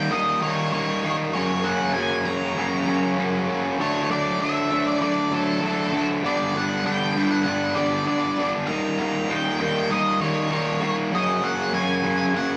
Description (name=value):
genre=rock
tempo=98 BPM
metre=4/4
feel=straight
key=unclear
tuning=A4 = 438 Hz
part: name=octave-fuzz lead guitar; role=melody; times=0.0-12.6 s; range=A4 to A#5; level=-29 LUFS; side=equal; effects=distortion
part: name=fuzz guitar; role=riff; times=0.0-12.6 s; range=F#2 to D#4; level=-24 LUFS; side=equal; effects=distortion
room=moderate stone room reverb, RT60 1.0 s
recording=rough rehearsal-room recording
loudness=-23 LUFS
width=mono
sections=0.0-12.6 A section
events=none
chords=0.0 D#; 1.3 F#; 3.8 D; 6.2 G; 8.7 D#; 11.1 F#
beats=0.12 0.73 | 1.34 1.95 2.56 3.17 | 3.79 4.40 5.01 5.62 | 6.24 6.85 7.46 8.07 | 8.68 9.29 9.90 10.51 | 11.12 11.73 12.34